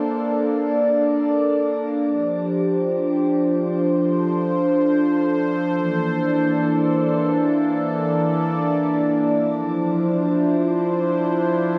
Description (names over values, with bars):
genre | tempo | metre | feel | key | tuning
hip hop | free time | none | none | D minor | A4 = 440 Hz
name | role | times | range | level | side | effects
sweeping resonant pad | solo | 0.0-11.8 s | E3 to D5 | -20 LUFS | equal | chorus, phaser
room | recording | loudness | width
light reverb | none | -20 LUFS | mono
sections
0.0-9.5 A section; 9.5-11.8 B section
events
none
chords
0.0 Bbmaj7; 2.1 G7sus4; 5.8 C13; 9.5 Dm9